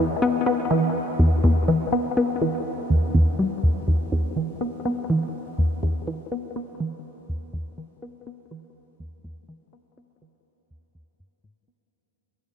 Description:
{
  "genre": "ambient",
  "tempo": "123 BPM",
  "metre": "4/4",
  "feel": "straight",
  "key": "E minor",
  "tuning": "A4 = 440 Hz",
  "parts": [
    { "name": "resonant blip pluck", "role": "riff", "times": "0.0-11.8 s", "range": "E2 to B3", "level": "-21 LUFS", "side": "equal", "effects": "phaser, ping-pong delay" }
  ],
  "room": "moderate huge ambient reverb, RT60 8.7 s",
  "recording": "in a vast, echoing space",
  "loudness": "-21 LUFS",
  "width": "side -9 dB against mid",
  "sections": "0.0-11.9 A section",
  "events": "fade-out 0.0-11.9; filter sweep on synth arpeggio sound 0.0-11.9",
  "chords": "none",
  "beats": "| 0.22 0.70 1.19 1.68 | 2.17 2.66 3.14 3.63 | 4.12 4.61 5.09 5.58 | 6.07 6.56 7.05 7.53 | 8.02 8.51 9.00 9.48 | 9.97 10.46 10.95 11.44"
}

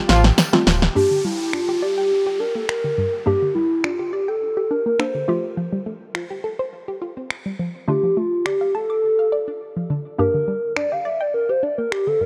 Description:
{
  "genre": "dance-pop",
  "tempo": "104 BPM",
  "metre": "4/4",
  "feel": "straight",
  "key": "G minor",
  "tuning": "A4 = 440 Hz",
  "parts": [
    { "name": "hollow square pluck", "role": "accompaniment", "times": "0.0-12.3 s", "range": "G3 to A4", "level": "-25 LUFS", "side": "equal", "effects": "chorus" },
    { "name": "granular cloud pad", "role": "sustained chords", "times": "0.0-0.9 s", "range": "G4 to A5", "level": "-37 LUFS", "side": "equal", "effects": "built-in reverb" },
    { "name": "sub bass with octave", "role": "bass", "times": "0.1-0.9 s", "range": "D1 to A1", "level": "-19 LUFS", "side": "equal", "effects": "none" },
    { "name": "house drum kit", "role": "drums", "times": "0.1-12.1 s", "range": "finger snaps, hi-hat, snare drum", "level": "-21 LUFS", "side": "equal", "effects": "none" },
    { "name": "tambourine", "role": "percussion", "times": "0.1-0.8 s", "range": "none", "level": "-37 LUFS", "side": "equal", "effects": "none" },
    { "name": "hollow clarinet-like synth lead", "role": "melody", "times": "1.0-12.3 s", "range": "E4 to F5", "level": "-23 LUFS", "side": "equal", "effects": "chorus, tape echo" },
    { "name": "unison pluck", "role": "arpeggios", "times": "1.0-12.3 s", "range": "G2 to D6", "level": "-30 LUFS", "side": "equal", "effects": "tape echo" },
    { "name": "downlifter", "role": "sound effects", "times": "1.0-5.6 s", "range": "none", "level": "-38 LUFS", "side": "equal", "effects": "none" }
  ],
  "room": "light reverb",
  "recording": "none",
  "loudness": "-21 LUFS",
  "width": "mono",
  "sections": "1.0-12.3 A section",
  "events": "drum fill 0.0-1.0; break 9.6-10.2",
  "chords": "0.0 Fadd9; 1.0 Gm; 5.3 Fadd9; 7.9 Dm; 10.2 Gm",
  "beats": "0.38 | 0.96 1.53 2.11 2.69 | 3.27 3.84 4.42 5.00 | 5.57 6.15 6.73 7.30 | 7.88 8.46 9.04 9.61 | 10.19 10.77 11.34 11.92"
}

